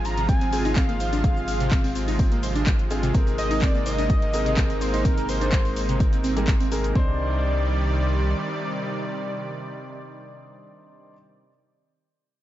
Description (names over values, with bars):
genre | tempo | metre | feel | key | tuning
progressive house | 126 BPM | 4/4 | straight | C minor | A4 = 442 Hz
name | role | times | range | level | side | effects
wide unison lead | melody | 0.0-6.2 s | Bb4 to Bb5 | -29 LUFS | equal | sidechain pumping, digital delay
supersaw pad | sustained chords | 0.0-11.1 s | C3 to D5 | -30 LUFS | right 1 dB | sidechain pumping
clear grand piano | stabs | 0.0-11.1 s | C4 to C5 | -32 LUFS | left 2 dB | sidechain pumping, digital delay
round analog bass | bass | 0.0-8.3 s | Ab1 to C2 | -26 LUFS | equal | sidechain pumping
house drum kit | drums | 0.1-6.9 s | handclaps, hi-hat, shaker | -33 LUFS | left 1 dB | overdrive, sidechain pumping on hats, sidechain pumping on perc
glassy wavetable pluck | arpeggios | 0.2-7.2 s | C3 to C5 | -30 LUFS | right 1 dB | chorus, sidechain pumping, digital delay
electronic kick drum | drums | 0.3-7.1 s | none | -21 LUFS | equal | overdrive
room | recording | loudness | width
little or no reverb | nothing above 7.7 kHz | -20 LUFS | side -13 dB against mid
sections
0.0-7.0 A section; 7.0-10.8 B section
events
drop 0.0-7.0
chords
0.0 Fm/Ab; 3.1 Abadd9; 7.0 Cmadd9